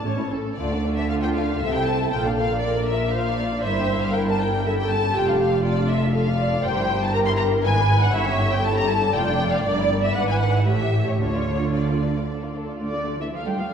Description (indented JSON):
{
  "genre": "quick classical-period movement for string orchestra",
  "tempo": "118 BPM",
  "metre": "3/4",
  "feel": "rubato",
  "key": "D minor",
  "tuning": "A4 = 439 Hz",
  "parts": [
    { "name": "muted studio violin section", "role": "melody", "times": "0.0-13.7 s", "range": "F4 to C6", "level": "-26 LUFS", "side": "left 3 dB", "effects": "none" },
    { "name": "muted studio violin section", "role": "second line", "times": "0.0-13.7 s", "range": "A3 to G5", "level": "-30 LUFS", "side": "equal", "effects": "none" },
    { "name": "muted studio viola section", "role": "accompaniment", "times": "0.0-13.7 s", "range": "A3 to D5", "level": "-26 LUFS", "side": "right 1 dB", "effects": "none" },
    { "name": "muted studio double bass section", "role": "bass", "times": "0.0-13.7 s", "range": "F1 to D2", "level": "-25 LUFS", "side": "right 1 dB", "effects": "none" },
    { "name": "muted studio cello section", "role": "bass", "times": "0.1-13.7 s", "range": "F2 to G3", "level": "-27 LUFS", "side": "right 2 dB", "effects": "none" }
  ],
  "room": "wet scoring stage reverb, RT60 1.6 s",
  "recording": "heard from further back in the room",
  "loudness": "-19 LUFS",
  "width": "side -7 dB against mid",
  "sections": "0.6-12.8 A section",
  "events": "none",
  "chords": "0.0 A; 0.6 Dm; 1.6 Am/C; 2.1 Bb; 3.6 Em7b5/G; 4.7 A7/G; 5.2 Dm/F; 6.6 Edim/G; 7.6 E7/G#; 8.1 A7/G; 9.1 Dm/F; 9.6 Em7b5/G; 10.2 E7/G#; 10.7 A7; 11.2 Dm",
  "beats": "0.05 | 0.58 1.10 1.62 | 2.12 2.63 3.14 | 3.65 4.15 4.65 | 5.15 5.65 6.14 | 6.64 7.13 7.63 | 8.13 8.63 9.13 | 9.64 10.15 10.67 | 11.20 11.73 12.27 | 12.80 13.32"
}